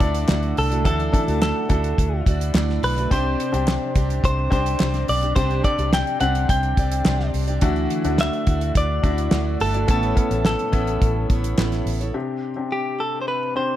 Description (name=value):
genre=piano-driven pop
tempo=106 BPM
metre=4/4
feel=straight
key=D mixolydian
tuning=A4 = 442 Hz
part: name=direct-recorded clean electric guitar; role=melody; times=0.0-13.8 s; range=G4 to G5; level=-25 LUFS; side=equal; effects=none
part: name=clear upright piano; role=accompaniment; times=0.0-13.8 s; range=A2 to A4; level=-27 LUFS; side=left 5 dB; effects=none
part: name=tonewheel organ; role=sustained chords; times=0.0-13.8 s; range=C3 to G4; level=-34 LUFS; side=equal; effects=none
part: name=picked plugged-in steel-string acoustic guitar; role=riff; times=0.0-12.2 s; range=C3 to D5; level=-29 LUFS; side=right 5 dB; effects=none
part: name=vintage muted fingered electric bass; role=bass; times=0.0-12.1 s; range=G1 to D2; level=-23 LUFS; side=equal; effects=none
part: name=damped 70s drum kit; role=drums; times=0.0-12.1 s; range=hi-hat, kick drum, snare drum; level=-22 LUFS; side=equal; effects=none
part: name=group handclap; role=percussion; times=0.3-11.7 s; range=none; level=-35 LUFS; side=left 4 dB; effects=none
room=light reverb, small room reverb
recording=none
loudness=-18 LUFS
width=side -12 dB against mid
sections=0.0-12.1 A section; 12.1-13.8 B section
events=none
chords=0.0 Dadd9; 3.1 Csus2; 7.6 Dadd9; 9.9 Aadd9; 12.1 Csus2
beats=0.29 | 0.85 1.42 1.98 2.55 | 3.11 3.68 4.24 4.80 | 5.37 5.93 6.50 7.07 | 7.63 8.19 8.76 9.32 | 9.89 10.45 11.02 11.58 | 12.15 12.71 13.28